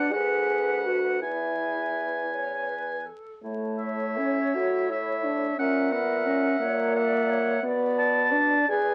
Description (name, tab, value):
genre	classical, slow romantic movement for wind quintet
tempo	53-60 BPM (dotted quarters)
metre	6/8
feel	rubato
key	A major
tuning	A4 = 438 Hz
part	mellow silver concert flute	melody	0.0-8.9 s	G#4 to D5	-37 LUFS	equal	none
part	bright oboe	second line	0.0-8.9 s	E5 to A5	-30 LUFS	equal	none
part	mellow clarinet	accompaniment	0.0-8.9 s	B4 to E5	-36 LUFS	equal	none
part	warm French horn	accompaniment	0.0-8.9 s	A3 to G#4	-29 LUFS	equal	none
part	mellow bassoon	bass	0.0-8.9 s	D2 to B2	-35 LUFS	equal	none
room	moderate studio ambience, RT60 0.5 s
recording	very old 78 rpm record, vinyl crackle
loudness	-26 LUFS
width	mono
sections	0.0-8.9 A section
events	none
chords	0.1 Bm/D; 1.2 E; 3.4 A; 5.6 F#7/A#; 7.6 Bm7